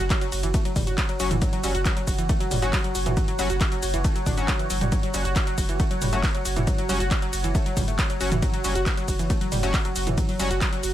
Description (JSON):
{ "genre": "driving peak-time techno", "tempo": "137 BPM", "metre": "4/4", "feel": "straight", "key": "unclear", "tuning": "A4 = 441 Hz", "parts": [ { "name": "analog pluck", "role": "riff", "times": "0.0-10.9 s", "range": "E3 to F#4", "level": "-30 LUFS", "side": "equal", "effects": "chorus, overdrive, vintage 12-bit sampler grit, sidechain pumping, digital delay" }, { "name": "saturated sub bass", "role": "bass", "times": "0.0-10.9 s", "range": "F#1", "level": "-28 LUFS", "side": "equal", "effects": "overdrive, sidechain pumping, low-pass filter" }, { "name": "punchy analog drum machine", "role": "drums", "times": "0.0-10.9 s", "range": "handclaps, hi-hat, ride cymbal, shaker, toms", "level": "-29 LUFS", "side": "equal", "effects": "none" }, { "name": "deep dark ambient pad", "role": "texture", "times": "0.0-10.9 s", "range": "F#4 to F#5", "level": "-32 LUFS", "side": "right 2 dB", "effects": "chorus, built-in reverb, sidechain pumping" }, { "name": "electronic kick drum", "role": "drums", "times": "0.1-10.7 s", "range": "none", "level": "-24 LUFS", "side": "equal", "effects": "none" }, { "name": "sync-sweep polysynth", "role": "stabs", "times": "1.2-10.5 s", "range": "F#3 to F#4", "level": "-31 LUFS", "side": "left 3 dB", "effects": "chorus, sidechain pumping, ping-pong delay" } ], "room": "digital ambience", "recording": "none", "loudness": "-21 LUFS", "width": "side -12 dB against mid", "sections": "0.0-10.9 A section", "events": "none", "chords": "0.0 F#5", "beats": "0.10 0.54 0.98 | 1.42 1.85 2.29 2.73 | 3.17 3.61 4.04 4.48 | 4.92 5.36 5.80 6.23 | 6.67 7.11 7.55 7.99 | 8.42 8.86 9.30 9.74 | 10.18 10.61" }